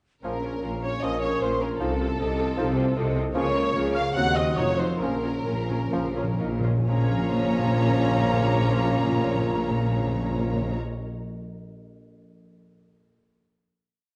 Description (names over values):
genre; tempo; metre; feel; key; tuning
classical, dramatic, fast romantic movement for symphony orchestra; 124-157 BPM; 4/4; straight; Bb minor; A4 = 440 Hz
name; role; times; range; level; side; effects
warm symphonic violin section; melody; 0.2-10.8 s; A4 to Gb5; -35 LUFS; equal; none
dark clarinet; second line; 0.2-10.8 s; C4 to Eb4; -38 LUFS; equal; none
flute section; second line; 0.2-10.8 s; A5 to Gb6; -37 LUFS; equal; none
warm symphonic violin section; second line; 0.2-10.8 s; A4 to Bb5; -38 LUFS; equal; none
rich symphonic viola section; accompaniment; 0.2-10.8 s; Bb3 to Gb4; -38 LUFS; equal; none
warm bassoon; accompaniment; 0.2-10.8 s; F3 to Gb3; -36 LUFS; equal; none
mellow French horn section; sustained chords; 0.2-10.8 s; Bb3 to C5; -35 LUFS; equal; none
warm trombone section; sustained chords; 0.2-10.8 s; Bb2 to Eb4; -37 LUFS; equal; none
concert harp; arpeggios; 0.2-11.1 s; Bb2 to F5; -37 LUFS; equal; none
clear symphonic double bass section; bass; 0.2-10.8 s; F1 to Eb2; -35 LUFS; equal; none
mellow tuba; bass; 0.2-10.8 s; F1 to Eb2; -35 LUFS; equal; none
rich symphonic cello section; bass; 0.2-10.8 s; Eb2 to Db3; -34 LUFS; equal; none
timpani; percussion; 5.0-10.8 s; Bb2; -30 LUFS; equal; none
room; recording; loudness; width
moderate scoring stage reverb, RT60 1.6 s; nothing above 10.4 kHz; -25 LUFS; mono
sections
0.2-6.9 A section; 6.9-10.7 final chord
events
slowing down 2.6-6.9; timpani fill 5.0-6.9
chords
0.2 Bbm; 1.8 F7/C; 3.4 Bbm/Db; 4.2 Cdim/Eb; 4.6 F7b9; 5.0 Bbm